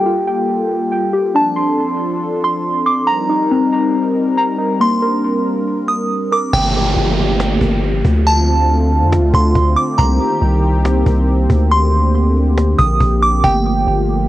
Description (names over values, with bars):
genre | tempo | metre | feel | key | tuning
hip hop, atmospheric cloud-rap | 139 BPM | 4/4 | half-time | C dorian | A4 = 439 Hz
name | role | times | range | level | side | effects
delicate synth tine bell | melody | 0.0-14.3 s | G5 to Eb6 | -18 LUFS | right 1 dB | chorus, phaser, low-pass filter, analog delay
warm analog pad | sustained chords | 0.0-14.3 s | D3 to Bb4 | -19 LUFS | equal | chorus, low-pass filter, cassette tape
muted felt-like synth keys | arpeggios | 0.0-6.5 s | Bb3 to C6 | -18 LUFS | left 2 dB | chorus, low-pass filter, cassette tape, analog delay
long sustained 808-style bass | bass | 6.5-14.3 s | G1 to F2 | -14 LUFS | equal | none
cajon | drums | 6.5-14.1 s | none | -20 LUFS | equal | cassette tape
downlifter | sound effects | 6.5-10.0 s | none | -23 LUFS | right 1 dB | none
room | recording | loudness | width
light reverb | home recording on cassette | -13 LUFS | side -15 dB against mid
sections
0.0-6.5 A section; 6.5-14.3 B section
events
filter sweep 0.0-6.5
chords
0.0 Gm9; 1.4 Dm7; 3.1 Cm7; 4.8 Bb69; 6.5 Gm9; 8.3 Dm7; 10.0 Cm7; 11.7 Bb69; 13.4 Gm9